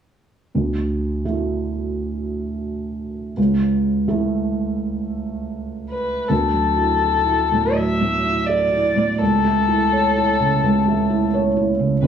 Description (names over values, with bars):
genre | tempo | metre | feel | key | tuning
neoclassical piano and strings | 84 BPM | 4/4 | rubato | unclear | A4 = 440 Hz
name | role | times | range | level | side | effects
felt-muted upright piano | accompaniment | 0.5-12.1 s | C#2 to C#5 | -19 LUFS | right 2 dB | none
dark violin | melody | 5.9-12.1 s | A4 to E5 | -19 LUFS | left 4 dB | none
room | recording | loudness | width
moderate spring reverb, RT60 2.4 s | small room reverb | -18 LUFS | side -8 dB against mid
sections
0.5-6.3 A section; 6.3-12.1 B section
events
none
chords
0.5 Dadd9; 3.4 A/C#; 6.3 Dadd9; 9.2 A/C#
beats
| 0.54 1.26 1.98 2.67 | 3.37 4.08 4.80 5.54 | 6.29 7.02 7.76 8.48 | 9.20 9.91 10.63 11.34 | 12.04